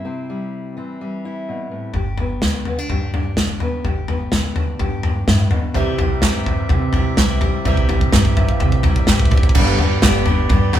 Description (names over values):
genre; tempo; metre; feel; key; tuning
indie folk with a building arrangement; 126 BPM; 4/4; straight; unclear; A4 = 438 Hz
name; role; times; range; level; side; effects
fingerpicked steel-string acoustic guitar; accompaniment; 0.0-5.8 s; G2 to G4; -27 LUFS; left 2 dB; none
upright bass; bass; 1.9-10.8 s; G1 to C3; -22 LUFS; equal; none
natural country drum kit; drums; 1.9-10.8 s; crash cymbal, kick drum, snare drum, toms; -17 LUFS; equal; none
bright upright piano; accompaniment; 5.7-10.8 s; G1 to G5; -27 LUFS; right 4 dB; none
picked steel-string acoustic guitar; accompaniment; 5.8-10.8 s; G2 to G4; -23 LUFS; left 1 dB; none
pedal harmonium; sustained chords; 5.8-10.8 s; C4 to B5; -28 LUFS; right 1 dB; none
group handclap; percussion; 6.2-10.8 s; none; -26 LUFS; right 6 dB; none
room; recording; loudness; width
moderate studio reverb, RT60 0.9 s; band playing live in one room; -15 LUFS; side -11 dB against mid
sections
0.0-2.0 A section; 2.0-9.6 B section; 9.6-10.8 C section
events
build-up 2.0-9.6; drum fill 2.0-9.6; upright piano fill 8.1-9.6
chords
0.0 C; 2.0 G; 5.8 C; 9.6 G